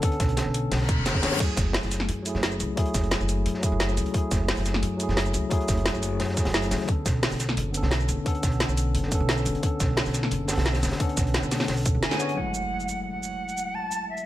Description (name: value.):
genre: liquid drum and bass.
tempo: 175 BPM.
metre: 4/4.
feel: straight.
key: F# minor.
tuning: A4 = 440 Hz.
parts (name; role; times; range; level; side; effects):
tine electric piano; accompaniment; 0.0-14.3 s; D3 to C#5; -29 LUFS; left 1 dB; auto-pan, low-pass filter, dub echo.
crunchy breakbeat drum kit; drums; 0.0-12.4 s; hi-hat, snare drum; -34 LUFS; equal; high-pass filter on hats, high-pass filter on snare, high-pass filter on room.
drum and bass drum kit; drums; 0.0-14.2 s; crash cymbal, hi-hat, shaker, snare drum; -29 LUFS; equal; none.
electronic kick drum; drums; 0.0-11.9 s; none; -25 LUFS; equal; none.
upright bass; bass; 0.2-12.0 s; F#1 to F#2; -27 LUFS; equal; none.
reverse cymbal and impact; sound effects; 0.8-1.4, 12.4-13.7 s; none; -33 LUFS; left 2 dB; none.
silver concert flute; melody; 12.0-14.3 s; E5 to A5; -30 LUFS; right 1 dB; dub echo.
room: light reverb, studio reverb.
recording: none.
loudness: -23 LUFS.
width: side -14 dB against mid.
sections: 0.0-12.4 A section; 12.4-14.3 B section.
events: reverse cymbal 0.8-1.4; kick drops out 12.0-12.4; band accent 12.0; impact 12.4-13.7.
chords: 0.0 Bm9; 1.4 F#m9; 6.9 Bm9; 12.4 F#m9.